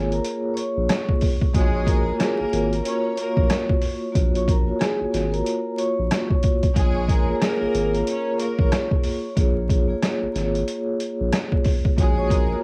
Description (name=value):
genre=hip hop, boom-bap hip-hop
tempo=92 BPM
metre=4/4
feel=swing 61% on 16ths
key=Bb minor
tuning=A4 = 440 Hz
part: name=vibraphone with medium hard mallets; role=melody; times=0.0-12.6 s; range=Ab4 to Db6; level=-31 LUFS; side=equal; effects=cassette tape
part: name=vibraphone with soft mallets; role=accompaniment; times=0.0-12.6 s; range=Bb3 to Db5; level=-28 LUFS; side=equal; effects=cassette tape
part: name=saturated sub bass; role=bass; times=0.0-12.6 s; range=Ab1 to Bb1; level=-28 LUFS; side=equal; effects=none
part: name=trip hop sampler-style drum kit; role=drums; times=0.1-12.5 s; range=hi-hat, kick drum, rim click, snare drum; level=-24 LUFS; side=equal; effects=cassette tape
part: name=warm chamber string section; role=stabs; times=1.6-12.6 s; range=Ab3 to Db5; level=-32 LUFS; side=equal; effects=cassette tape
room=little or no reverb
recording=home recording on cassette, vinyl crackle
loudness=-22 LUFS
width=mono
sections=0.0-12.6 A section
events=none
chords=0.0 Bbm7; 1.5 Gbmaj7; 6.8 Bbm7; 12.0 Gbmaj7